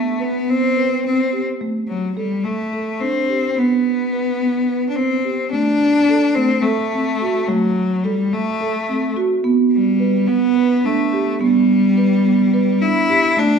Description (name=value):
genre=contemporary instrumental, chamber music in an uneven meter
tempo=214 BPM (eighths)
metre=7/8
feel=straight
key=unclear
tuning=A4 = 441 Hz
part: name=bright cello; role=melody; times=0.0-13.6 s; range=F#3 to E4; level=-18 LUFS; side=left 4 dB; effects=none
part: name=marimba with soft mallets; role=arpeggios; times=0.2-13.6 s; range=A3 to B4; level=-18 LUFS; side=right 4 dB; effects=none
room=wet recital hall reverb, RT60 1.4 s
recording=recorded in a church or concert hall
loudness=-15 LUFS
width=side -6 dB against mid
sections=0.0-5.5 A section; 5.5-13.6 B section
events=none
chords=0.0 C5; 1.6 N.C.; 3.6 C5; 5.5 D5; 9.4 G